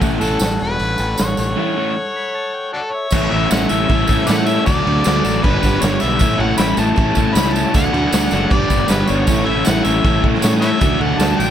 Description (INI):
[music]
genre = garage rock duo or trio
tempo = 156 BPM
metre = 4/4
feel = straight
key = A mixolydian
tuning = A4 = 439 Hz
[part]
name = combo organ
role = sustained chords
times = 0.0-11.5 s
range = E4 to B5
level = -27 LUFS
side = equal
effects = none
[part]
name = crunchy overdriven guitar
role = riff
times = 0.0-11.5 s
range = G2 to A4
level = -19 LUFS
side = equal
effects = none
[part]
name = fuzz fingered electric bass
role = bass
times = 0.0-11.5 s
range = E1 to A2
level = -21 LUFS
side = equal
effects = overdrive
[part]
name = raw garage drum kit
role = drums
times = 0.0-11.5 s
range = crash cymbal, hi-hat, kick drum, snare drum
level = -18 LUFS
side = right 1 dB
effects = none
[part]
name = tambourine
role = percussion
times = 0.0-11.5 s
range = none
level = -30 LUFS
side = right 7 dB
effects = none
[part]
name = overdriven harmonica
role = melody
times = 0.2-11.5 s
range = D4 to B5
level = -21 LUFS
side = left 3 dB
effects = none
[sound]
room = little or no reverb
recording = none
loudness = -14 LUFS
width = side -10 dB against mid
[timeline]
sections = 0.0-3.1 A section; 3.1-11.5 B section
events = break 1.6-3.1; transistor combo organ fill 2.0-3.1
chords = 0.0 A; 4.7 D; 5.4 G; 6.2 A; 7.7 D; 8.5 G; 9.3 A; 10.8 D